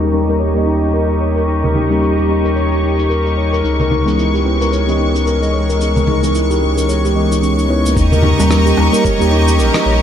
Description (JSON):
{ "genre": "organic downtempo", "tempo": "111 BPM", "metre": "4/4", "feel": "swing 58% on 16ths", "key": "Eb phrygian dominant", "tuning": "A4 = 441 Hz", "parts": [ { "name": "muted felt-like synth keys", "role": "accompaniment", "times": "0.0-10.0 s", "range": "Fb3 to Eb5", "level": "-19 LUFS", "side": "equal", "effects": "chorus, sidechain pumping, tape echo" }, { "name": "clear studio string section", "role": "sustained chords", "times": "0.0-10.0 s", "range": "Ab3 to Db6", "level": "-20 LUFS", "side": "left 1 dB", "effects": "sidechain pumping, low-pass filter" }, { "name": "handpan", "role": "arpeggios", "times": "0.0-9.9 s", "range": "Bb3 to Eb5", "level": "-18 LUFS", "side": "left 1 dB", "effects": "low-pass filter, tape echo" }, { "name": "warm sub bass", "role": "bass", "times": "0.0-10.0 s", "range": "Bb1 to Eb2", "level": "-16 LUFS", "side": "equal", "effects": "none" }, { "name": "electronic cabasa, congas and rim click", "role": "drums", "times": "0.0-9.8 s", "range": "none", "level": "-24 LUFS", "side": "right 1 dB", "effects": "none" }, { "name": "electronic kick drum", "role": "drums", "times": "8.0-9.2 s", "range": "none", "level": "-17 LUFS", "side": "equal", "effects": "none" }, { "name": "darbuka", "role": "percussion", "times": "8.2-9.8 s", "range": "none", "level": "-27 LUFS", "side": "equal", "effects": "none" } ], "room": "moderate huge ambient reverb, RT60 8.5 s", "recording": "dreamy mix soaked in reverb, low-pass filter", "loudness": "-12 LUFS", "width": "side -9 dB against mid", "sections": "0.0-8.0 A section; 8.0-10.0 B section", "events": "filter sweep on handpan 0.0-8.0; filter sweep on string section 0.0-8.0; filter sweep 0.0-8.0", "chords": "0.0 Eb7; 3.6 Dbm7; 8.0 Eb7" }